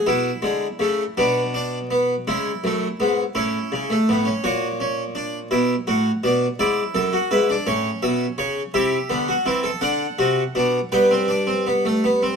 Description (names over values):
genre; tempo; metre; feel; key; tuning
classical, baroque-style 4-part fugue for harpsichord; 55 BPM (dotted quarters); 6/8; straight; B minor, G major from 8.7 s; A4 = 440 Hz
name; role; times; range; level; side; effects
harpsichord; solo; 0.0-12.4 s; F#2 to G5; -19 LUFS; equal; none
room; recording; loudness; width
moderate stone room reverb, RT60 1.0 s; vinyl crackle; -19 LUFS; side -6 dB against mid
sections
0.1-12.4 A section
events
none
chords
0.1 Bm; 2.3 C#m; 3.4 A; 4.4 F#/A#; 5.5 Bm; 6.6 E7; 7.7 A; 8.7 Am7/C; 9.8 D7; 10.9 G